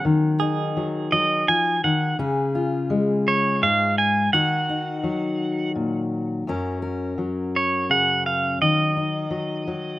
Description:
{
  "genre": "acoustic folk-pop ballad",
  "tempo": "56 BPM (dotted quarters)",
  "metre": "6/8",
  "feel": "straight",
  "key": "F# major",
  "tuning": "A4 = 436 Hz",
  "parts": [
    { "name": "pedal steel guitar", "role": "melody", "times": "0.0-10.0 s", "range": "C#5 to G#5", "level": "-21 LUFS", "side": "right 2 dB", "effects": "slapback echo" },
    { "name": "fingerpicked steel-string acoustic guitar", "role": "accompaniment", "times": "0.0-10.0 s", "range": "F#2 to A#4", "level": "-23 LUFS", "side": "left 2 dB", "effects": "none" },
    { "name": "direct-recorded clean electric guitar", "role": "arpeggios", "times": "0.0-2.5 s", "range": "F#4 to G#4", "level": "-30 LUFS", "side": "right 8 dB", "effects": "tremolo, slapback echo" }
  ],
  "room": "light reverb",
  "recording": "recorded outdoors, with no room sound",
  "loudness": "-20 LUFS",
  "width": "side -16 dB against mid",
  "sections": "0.0-6.5 A section; 6.5-10.0 A section",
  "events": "none",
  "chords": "0.1 D#m; 2.2 C#; 4.3 D#m; 6.5 F#; 8.6 D#m",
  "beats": "| 0.05 1.12 | 2.18 3.25 | 4.32 5.39 | 6.46 7.54 | 8.61 9.68"
}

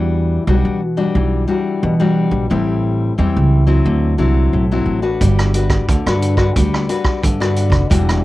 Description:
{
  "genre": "samba and choro",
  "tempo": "89 BPM",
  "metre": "4/4",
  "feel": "straight",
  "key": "unclear",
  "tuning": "A4 = 440 Hz",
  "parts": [
    { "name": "nylon-string guitar", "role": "accompaniment", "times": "0.0-8.2 s", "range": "A2 to B4", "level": "-18 LUFS", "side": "left 4 dB", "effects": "cassette tape" },
    { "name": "upright bass", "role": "bass", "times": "0.0-8.2 s", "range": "E1 to E3", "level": "-16 LUFS", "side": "right 1 dB", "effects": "none" },
    { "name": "vintage drum kit", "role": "drums", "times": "5.2-8.2 s", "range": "hi-hat, kick drum, rim click", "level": "-18 LUFS", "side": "right 1 dB", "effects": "cassette tape" }
  ],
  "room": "light reverb",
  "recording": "home recording on cassette",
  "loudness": "-13 LUFS",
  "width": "side -17 dB against mid",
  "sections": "0.0-8.2 A section",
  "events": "none",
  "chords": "0.0 Em9; 2.5 Am7; 3.9 D9; 5.2 Gmaj7",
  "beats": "0.47 1.15 1.83 | 2.50 3.18 3.85 4.53 | 5.21 5.88 6.56 7.23 | 7.91"
}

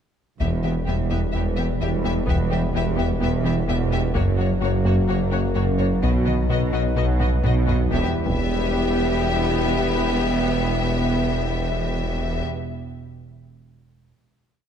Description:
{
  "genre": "cinematic, hybrid orchestral and electronic film score",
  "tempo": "128 BPM",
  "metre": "4/4",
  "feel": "straight",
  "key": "E harmonic minor",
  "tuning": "A4 = 440 Hz",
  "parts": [
    { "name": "rich symphonic violin section", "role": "melody", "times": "0.4-12.4 s", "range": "C#5 to E5", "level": "-30 LUFS", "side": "left 6 dB", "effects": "none" },
    { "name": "warm symphonic violin section", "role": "second line", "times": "0.4-12.4 s", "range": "F#4 to G4", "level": "-32 LUFS", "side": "left 4 dB", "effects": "none" },
    { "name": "warm symphonic viola section", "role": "accompaniment", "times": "0.4-12.4 s", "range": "A#3 to B3", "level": "-31 LUFS", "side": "right 2 dB", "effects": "none" },
    { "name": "chorused pulse-width pad", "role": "sustained chords", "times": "0.4-12.2 s", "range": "E3 to B4", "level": "-31 LUFS", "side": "left 1 dB", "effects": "none" },
    { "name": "warm French horn section", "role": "sustained chords", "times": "0.4-12.1 s", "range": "F#3 to E4", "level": "-31 LUFS", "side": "left 6 dB", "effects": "none" },
    { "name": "glassy wavetable pluck", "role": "arpeggios", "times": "0.4-7.8 s", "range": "E3 to B4", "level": "-33 LUFS", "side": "left 1 dB", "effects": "none" },
    { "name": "round analog bass", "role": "riff", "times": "0.4-7.8 s", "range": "E2 to B3", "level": "-27 LUFS", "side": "left 3 dB", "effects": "none" },
    { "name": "clear tuba", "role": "bass", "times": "0.4-12.4 s", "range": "E1 to B1", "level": "-29 LUFS", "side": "right 4 dB", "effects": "none" },
    { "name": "pure sine sub bass", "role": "bass", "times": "0.4-12.4 s", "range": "E1 to B1", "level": "-28 LUFS", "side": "left 1 dB", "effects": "none" },
    { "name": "rich symphonic cello section", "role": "bass", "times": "0.4-12.4 s", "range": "E2 to B2", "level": "-28 LUFS", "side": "right 3 dB", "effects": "none" },
    { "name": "warm studio double bass section", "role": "bass", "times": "0.4-12.4 s", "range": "E1 to B1", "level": "-29 LUFS", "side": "right 6 dB", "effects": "none" },
    { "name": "taiko ensemble", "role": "drums", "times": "0.4-8.8 s", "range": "none", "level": "-28 LUFS", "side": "left 1 dB", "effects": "none" }
  ],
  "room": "moderate concert hall reverb, RT60 1.9 s",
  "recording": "dark, warm production",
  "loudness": "-19 LUFS",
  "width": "side -8 dB against mid",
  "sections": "0.4-7.9 theme; 7.9-11.7 final chord",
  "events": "drum fill 7.2-7.9",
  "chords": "0.4 Em; 4.2 F#; 6.0 B; 7.9 Em",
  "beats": "| 0.41 0.87 1.34 1.81 | 2.28 2.75 3.22 3.69 | 4.16 4.62 5.09 5.56 | 6.03 6.50 6.97 7.44 | 7.91 8.37 8.84 9.31 | 9.78 10.25 10.72 11.19"
}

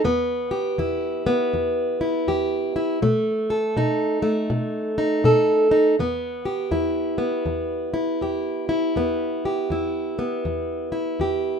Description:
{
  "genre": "blues",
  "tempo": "81 BPM",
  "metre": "4/4",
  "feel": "swing 63% on 8ths",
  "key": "E minor",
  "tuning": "A4 = 438 Hz",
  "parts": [
    { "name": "fingerpicked plugged-in steel-string acoustic guitar", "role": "solo", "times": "0.0-11.6 s", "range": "E2 to A4", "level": "-20 LUFS", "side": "equal", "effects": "none" }
  ],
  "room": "light reverb",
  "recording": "minimal, uncompressed stereo recording",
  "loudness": "-20 LUFS",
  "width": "side -6 dB against mid",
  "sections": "0.0-6.0 A section; 6.0-11.6 B section",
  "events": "none",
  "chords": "0.0 Em; 3.0 B7; 6.0 Em",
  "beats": "| 0.05 0.79 1.53 2.27 | 3.01 3.75 4.49 5.23 | 5.98 6.72 7.47 8.21 | 8.96 9.71 10.46 11.21"
}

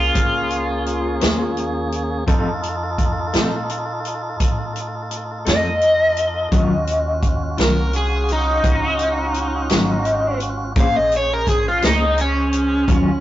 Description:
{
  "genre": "slow blues",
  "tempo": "57 BPM (dotted quarters)",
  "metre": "12/8",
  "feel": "straight",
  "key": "Bb minor",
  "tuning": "A4 = 440 Hz",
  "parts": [
    { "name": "crunchy overdriven guitar", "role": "melody", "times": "0.0-13.2 s", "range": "Db4 to F5", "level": "-19 LUFS", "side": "equal", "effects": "phaser" },
    { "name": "tonewheel organ", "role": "sustained chords", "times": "0.0-13.2 s", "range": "Gb3 to C5", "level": "-26 LUFS", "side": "right 1 dB", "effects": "overdrive" },
    { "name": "upright bass", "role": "bass", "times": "0.0-13.2 s", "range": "Ab1 to Bb2", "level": "-25 LUFS", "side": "equal", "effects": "none" },
    { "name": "vintage drum kit", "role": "drums", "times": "0.2-13.0 s", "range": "hi-hat, kick drum, snare drum", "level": "-20 LUFS", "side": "equal", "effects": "none" },
    { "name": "mellow electric guitar", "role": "accompaniment", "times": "1.2-13.1 s", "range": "Eb3 to C5", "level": "-22 LUFS", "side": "left 2 dB", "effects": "tremolo" }
  ],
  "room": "light reverb",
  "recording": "rough rehearsal-room recording, warm saturation, nothing above 7.6 kHz",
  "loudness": "-17 LUFS",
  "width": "side -14 dB against mid",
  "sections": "0.0-13.2 A section",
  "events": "overdriven electric guitar solo 0.0-13.2",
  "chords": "0.0 Bbm9; 2.3 F7; 6.5 Ebm9; 10.8 Bbm9",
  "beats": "0.15 1.22 | 2.28 3.34 4.40 5.47 | 6.53 7.59 8.65 9.71 | 10.76 11.82 12.88"
}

